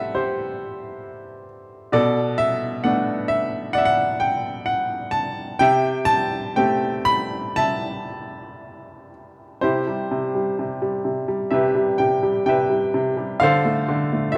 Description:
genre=classical, lyrical solo piano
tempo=57-68 BPM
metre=4/4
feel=rubato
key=A dorian, C major from 9.6 s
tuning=A4 = 440 Hz
part: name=bright upright piano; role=solo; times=0.0-14.4 s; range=B2 to B5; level=-22 LUFS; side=equal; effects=none
room=moderate scoring stage reverb, RT60 1.9 s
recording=dark, warm production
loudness=-21 LUFS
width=mono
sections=0.0-9.6 A section; 9.6-14.4 B section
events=none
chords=0.0 Am7/C; 1.9 Bm7; 5.6 Am7/C; 9.6 Cmaj7; 13.4 Dm7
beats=0.14 1.04 | 1.94 2.85 3.76 4.67 | 5.60 6.58 7.58 8.61 | 9.63 10.59 11.53 12.48 | 13.42 14.36

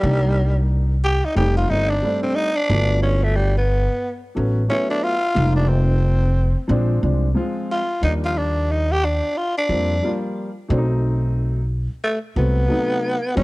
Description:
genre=hip hop, jazz-hop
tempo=90 BPM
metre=4/4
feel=swing 62% on 16ths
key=unclear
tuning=A4 = 440 Hz
part: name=growling tenor saxophone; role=melody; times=0.0-13.4 s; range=G3 to G4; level=-21 LUFS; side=equal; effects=none
part: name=dark upright piano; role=accompaniment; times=0.0-13.4 s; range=C3 to F#4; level=-25 LUFS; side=equal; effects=none
part: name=upright bass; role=bass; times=0.0-13.4 s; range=F1 to E#2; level=-19 LUFS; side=equal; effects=transformer saturation
room=small room ambience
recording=dry, gritty hardware recording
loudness=-18 LUFS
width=side -22 dB against mid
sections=0.0-13.4 A section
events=tenor saxophone solo 0.0-13.4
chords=0.0 Cm7; 1.4 F9; 2.7 Gmaj9; 5.4 Fm11; 6.7 A#9; 8.0 D#maj9; 10.7 B7b9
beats=| 0.03 0.70 1.36 2.03 | 2.70 3.36 4.03 4.70 | 5.36 6.03 6.70 7.36 | 8.03 8.70 9.36 10.03 | 10.70 11.36 12.03 12.70 | 13.36

